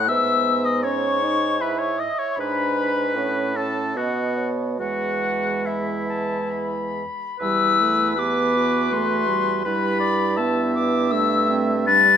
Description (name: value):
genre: classical, slow romantic movement for wind quintet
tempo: 63-83 BPM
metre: 3/4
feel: rubato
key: E major, E minor from 7.4 s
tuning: A4 = 439 Hz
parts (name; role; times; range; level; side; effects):
- silver concert flute; melody; 0.0-12.2 s; E5 to A6; -22 LUFS; left 5 dB; none
- warm oboe; second line; 0.0-12.2 s; E4 to E5; -26 LUFS; left 1 dB; none
- dark French horn; accompaniment; 0.0-12.2 s; G3 to E4; -27 LUFS; right 1 dB; none
- dark clarinet; accompaniment; 0.0-12.2 s; C4 to E5; -28 LUFS; right 7 dB; none
- warm bassoon; bass; 0.0-12.2 s; E2 to B2; -27 LUFS; right 2 dB; none
room: moderate recital hall reverb, RT60 1.6 s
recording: none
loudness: -19 LUFS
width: side -8 dB against mid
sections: 0.0-7.4 A section; 7.4-12.2 B section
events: none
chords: 0.1 E/G#; 2.4 G#dim; 3.2 A; 4.0 B; 4.8 E; 7.4 Em; 9.7 Em/G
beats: | 0.09 0.85 1.61 | 2.38 3.17 3.96 | 4.80 5.66 6.53 | 7.42 8.19 8.93 | 9.66 10.39 11.11 | 11.88